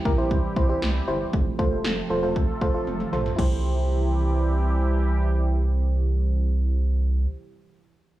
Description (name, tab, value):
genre	synth-pop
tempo	117 BPM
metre	4/4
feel	straight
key	C major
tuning	A4 = 442 Hz
part	sweeping resonant pad	sustained chords	0.0-7.3 s	C3 to A4	-30 LUFS	right 2 dB	chorus
part	FM electric piano with tremolo	accompaniment	0.1-7.3 s	E4 to C5	-29 LUFS	equal	none
part	rubbery square bass	bass	0.1-7.3 s	E1 to C2	-23 LUFS	right 1 dB	none
part	80s electronic pad drums	drums	0.1-3.5 s	crash cymbal, kick drum, snare drum, toms	-25 LUFS	equal	gated reverb on snare and toms
room	little or no reverb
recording	small room ambience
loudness	-21 LUFS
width	side -15 dB against mid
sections	0.0-3.4 A section; 3.4-7.5 B section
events	drum fill 2.9-3.4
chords	0.0 C; 1.3 F; 3.4 C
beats	0.31 0.82 | 1.33 1.85 2.36 2.87 | 3.38 3.90 4.41 4.92 | 5.44 5.95 6.46 6.97